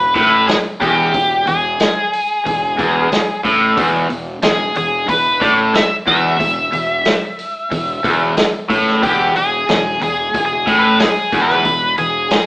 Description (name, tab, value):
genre	blues rock power trio and southern rock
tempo	91 BPM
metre	4/4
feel	straight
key	E major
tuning	A4 = 441 Hz
part	octave-fuzz lead guitar	melody	0.0-12.5 s	G4 to E5	-16 LUFS	equal	wah, distortion
part	overdriven semi-hollow guitar	riff	0.0-12.2 s	E2 to A2	-16 LUFS	equal	none
part	fuzz fingered electric bass	bass	0.0-12.3 s	E1 to A1	-27 LUFS	equal	overdrive
part	vintage drum kit	drums	0.2-12.5 s	hi-hat, kick drum, snare drum	-19 LUFS	equal	none
room	wet studio reverb, RT60 0.8 s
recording	band playing live in one room, AM radio sound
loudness	-12 LUFS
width	side -23 dB against mid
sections	0.0-12.5 A section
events	none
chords	0.0 E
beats	0.49 | 1.15 1.80 2.46 3.12 | 3.77 4.43 5.09 5.74 | 6.40 7.06 7.71 8.37 | 9.03 9.68 10.34 11.00 | 11.65 12.31